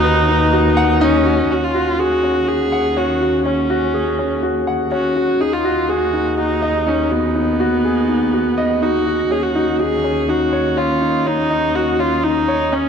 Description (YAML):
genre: piano and strings electronica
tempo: 123 BPM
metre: 4/4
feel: straight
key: unclear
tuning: A4 = 439 Hz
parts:
  - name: warm viola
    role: melody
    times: 0.0-12.9 s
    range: Cb4 to Ab4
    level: -18 LUFS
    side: right 1 dB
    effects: digital delay
  - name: warm grand piano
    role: riff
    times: 0.0-12.9 s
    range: Db4 to F#5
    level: -18 LUFS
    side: left 2 dB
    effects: digital delay
  - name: muted studio cello section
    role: bass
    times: 0.0-12.9 s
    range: D#2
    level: -23 LUFS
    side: right 2 dB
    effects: none
room: moderate concert hall reverb, RT60 2.4 s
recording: nothing above 10.6 kHz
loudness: -14 LUFS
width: side -7 dB against mid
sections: 0.0-1.5 A section; 1.5-12.9 B section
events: none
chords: 0.0 B/D#; 1.5 Gbsus2/Eb; 5.4 Abm7/Eb; 9.3 Ebm7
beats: 0.04 0.53 1.02 | 1.50 1.99 2.48 2.97 | 3.46 3.94 4.43 4.92 | 5.41 5.89 6.38 6.87 | 7.36 7.84 8.33 8.82 | 9.31 9.80 10.28 10.77 | 11.26 11.75 12.23 12.72